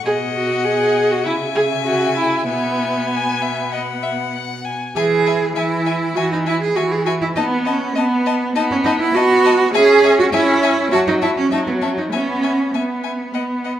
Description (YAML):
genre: quick classical-period movement for string quartet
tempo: 100 BPM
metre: 4/4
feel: straight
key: E major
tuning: A4 = 442 Hz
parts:
  - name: rich violin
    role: melody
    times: 0.0-13.7 s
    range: F#5 to A5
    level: -26 LUFS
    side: left 12 dB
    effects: none
  - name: rich violin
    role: second line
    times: 0.0-13.7 s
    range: D#5 to G#5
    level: -26 LUFS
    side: left 2 dB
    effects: none
  - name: rich cello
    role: bass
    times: 0.0-13.8 s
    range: B2 to G#4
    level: -18 LUFS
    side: right 3 dB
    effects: none
  - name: rich viola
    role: accompaniment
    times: 0.1-13.8 s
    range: E3 to G#4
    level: -20 LUFS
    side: equal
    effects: none
room: moderate recital hall reverb, RT60 1.6 s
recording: none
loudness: -15 LUFS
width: side -11 dB against mid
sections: 0.0-5.0 A section; 5.0-13.8 B section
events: none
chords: 0.1 B; 1.3 C#m; 2.5 E/B; 5.0 E; 7.4 B7; 9.7 C#m; 10.9 F#m; 12.1 E5/B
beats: | 0.06 0.66 1.26 1.87 | 2.49 3.11 3.73 4.34 | 4.96 5.57 6.17 6.77 | 7.36 7.96 8.55 9.14 | 9.74 10.32 10.92 11.52 | 12.12 12.74 13.34